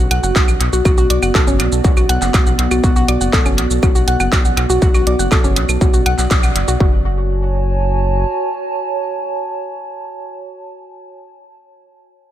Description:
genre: melodic techno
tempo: 121 BPM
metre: 4/4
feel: straight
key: F# minor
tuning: A4 = 440 Hz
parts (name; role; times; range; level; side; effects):
- woody wave-folded pluck; arpeggios; 0.0-7.0 s; C#4 to F#6; -20 LUFS; left 1 dB; chorus, sidechain pumping, tape echo
- round analog bass; bass; 0.0-8.3 s; F#1 to B1; -18 LUFS; equal; sidechain pumping
- warbly tape-like pad; texture; 0.0-10.8 s; B3 to A5; -22 LUFS; right 2 dB; chorus, built-in reverb, sidechain pumping
- techno drum kit; drums; 0.1-6.8 s; claves, handclaps, hi-hat, shaker; -21 LUFS; right 1 dB; overdrive, sidechain pumping on perc, sidechain pumping on hats, analog delay
- electronic kick drum; drums; 0.4-6.9 s; none; -14 LUFS; equal; distortion, overdrive
room: light reverb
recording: echo-heavy mix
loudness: -12 LUFS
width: side -12 dB against mid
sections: 0.0-6.8 A section; 6.8-10.8 B section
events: drop 0.0-6.8; band accent 6.3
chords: 0.0 Bm; 6.8 F#m

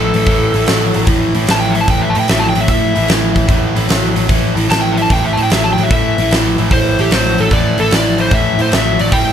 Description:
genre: blues rock power trio and southern rock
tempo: 149 BPM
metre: 4/4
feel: swing 68% on 8ths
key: A minor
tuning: A4 = 440 Hz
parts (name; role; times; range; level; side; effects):
- overdriven slide guitar; melody; 0.0-9.3 s; G4 to A5; -17 LUFS; equal; none
- raw garage guitar; riff; 0.0-9.3 s; A2 to F#3; -17 LUFS; right 1 dB; overdrive
- vintage muted picked electric bass; bass; 0.0-9.3 s; A1 to A2; -18 LUFS; equal; none
- huge arena drum kit; drums; 0.1-9.3 s; hi-hat, kick drum, snare drum; -16 LUFS; left 1 dB; none
room: light reverb, small room ambience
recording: none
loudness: -11 LUFS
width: side -9 dB against mid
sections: 0.0-9.3 A section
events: electric slide guitar solo 0.0-9.3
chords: 0.0 A5

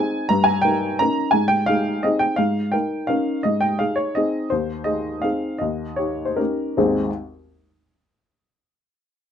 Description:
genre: classical, piano waltz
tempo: 135-181 BPM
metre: 3/4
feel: rubato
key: Ab major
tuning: A4 = 440 Hz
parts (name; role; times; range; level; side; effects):
- warm upright piano; solo; 0.0-7.1 s; Ab1 to Bb5; -19 LUFS; equal; none
room: light reverb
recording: nothing above 10.4 kHz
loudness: -19 LUFS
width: side -8 dB against mid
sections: 0.0-6.8 A section; 6.8-7.9 B section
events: slowing down 4.0-6.8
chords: 0.3 Eb7/G; 1.3 Ab; 2.4 Eb7/Ab; 3.4 Ab; 4.5 Ab/Eb; 5.6 Eb7; 6.8 Ab

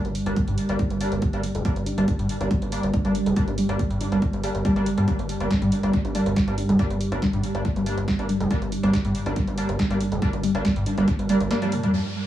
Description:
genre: driving peak-time techno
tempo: 140 BPM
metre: 4/4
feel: straight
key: G minor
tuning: A4 = 440 Hz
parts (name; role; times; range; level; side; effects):
- deep dark ambient pad; drone; 0.0-12.3 s; G2 to G3; -29 LUFS; right 1 dB; chorus, built-in reverb, sidechain pumping
- punchy analog drum machine; drums; 0.0-11.9 s; hi-hat, snare drum, toms; -31 LUFS; right 1 dB; sidechain pumping on hats, studio reverb, sidechain pumping on cymbals, sidechain pumping on toms, tape echo
- gritty driven synth bass; bass; 0.1-11.5 s; F1 to G2; -27 LUFS; equal; sidechain pumping
- warbly dusty pluck; riff; 0.3-12.0 s; F3 to G4; -26 LUFS; equal; chorus, tube saturation, sidechain pumping, analog delay
- sync-sweep polysynth; stabs; 0.3-12.0 s; G3 to D4; -30 LUFS; equal; wide subtle chorus, sidechain pumping, analog delay
- electronic kick drum; drums; 0.4-11.2 s; none; -25 LUFS; equal; overdrive, studio reverb
- downlifter; sound effects; 11.9-12.3 s; none; -34 LUFS; equal; none
room: light reverb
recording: echo-heavy mix, small room ambience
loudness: -21 LUFS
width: side -12 dB against mid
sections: 0.0-11.9 A section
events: filter sweep on synth arpeggio sound 0.0-11.9; band accent 11.5; drum fill 11.6-11.9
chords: 0.0 Gm

